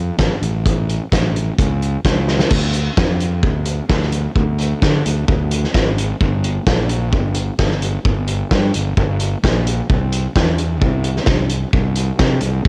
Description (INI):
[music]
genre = indie rock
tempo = 130 BPM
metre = 4/4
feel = straight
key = D minor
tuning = A4 = 440 Hz
[part]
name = fuzz fingered electric bass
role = bass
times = 0.0-12.7 s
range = G1 to D3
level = -21 LUFS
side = equal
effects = overdrive
[part]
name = loose indie drum kit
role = drums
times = 0.2-12.7 s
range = crash cymbal, hi-hat, kick drum, snare drum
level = -20 LUFS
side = equal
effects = cassette tape
[sound]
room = little or no reverb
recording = home recording on cassette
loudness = -18 LUFS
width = mono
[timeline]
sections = 0.0-2.5 A section; 2.5-12.7 B section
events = drum fill 2.3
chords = none